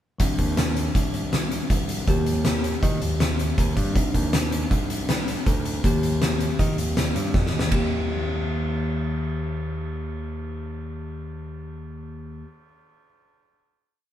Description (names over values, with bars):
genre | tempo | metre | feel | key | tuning
progressive instrumental, band music in an uneven meter | 160 BPM | 5/4 | straight | Eb major | A4 = 440 Hz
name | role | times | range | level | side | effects
bell-like tine electric piano | accompaniment | 0.2-12.5 s | Eb3 to G4 | -29 LUFS | left 1 dB | none
modern bright picked electric bass | bass | 0.2-12.4 s | C2 to Eb3 | -28 LUFS | equal | none
oversized low-tuned drum kit | drums | 0.2-7.8 s | hi-hat, kick drum, ride cymbal, snare drum | -24 LUFS | equal | none
room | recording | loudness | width
moderate stone room reverb, RT60 1.4 s | band playing live in one room | -22 LUFS | side -11 dB against mid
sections
0.2-7.7 A section; 7.7-11.4 final chord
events
drum fill 7.3-7.7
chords
0.2 Cmadd9; 2.1 Eb; 4.0 Cmadd9; 5.8 Eb